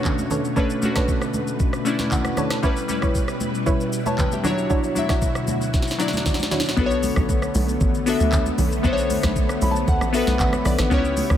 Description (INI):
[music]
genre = amapiano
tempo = 116 BPM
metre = 4/4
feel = straight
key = B minor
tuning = A4 = 440 Hz
[part]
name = glassy digital keys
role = accompaniment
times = 0.0-11.4 s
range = F#3 to B5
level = -24 LUFS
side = left 3 dB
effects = chorus
[part]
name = string machine, violas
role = sustained chords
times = 0.0-11.4 s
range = D2 to C#5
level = -28 LUFS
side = equal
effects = ensemble chorus
[part]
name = afro-pop drum kit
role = drums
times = 0.0-11.4 s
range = handclaps, hi-hat, kick drum, rim click, shaker, snare drum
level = -23 LUFS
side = equal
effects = none
[part]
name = congas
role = percussion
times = 0.1-11.4 s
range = none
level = -30 LUFS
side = right 3 dB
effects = none
[part]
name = soft round pluck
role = stabs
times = 0.3-6.8 s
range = D4 to C#5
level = -28 LUFS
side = right 2 dB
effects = chorus, digital delay
[part]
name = tight log drum bass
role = bass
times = 6.8-11.4 s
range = A1 to D2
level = -24 LUFS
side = equal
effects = none
[sound]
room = light reverb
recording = none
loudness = -19 LUFS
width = side -10 dB against mid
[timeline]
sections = 0.0-6.8 A section; 6.8-11.4 B section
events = synth keys fill 1.6-2.6, 9.4-10.9; drum fill 5.7-6.8; drop 6.8-11.4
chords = 0.0 Bm9; 2.6 C#m7b5; 4.4 Dmaj9; 6.8 Bm9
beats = 0.05 | 0.57 1.08 1.60 2.12 | 2.64 3.15 3.67 4.19 | 4.71 5.22 5.74 6.26 | 6.77 7.29 7.81 8.33 | 8.84 9.36 9.88 10.39 | 10.91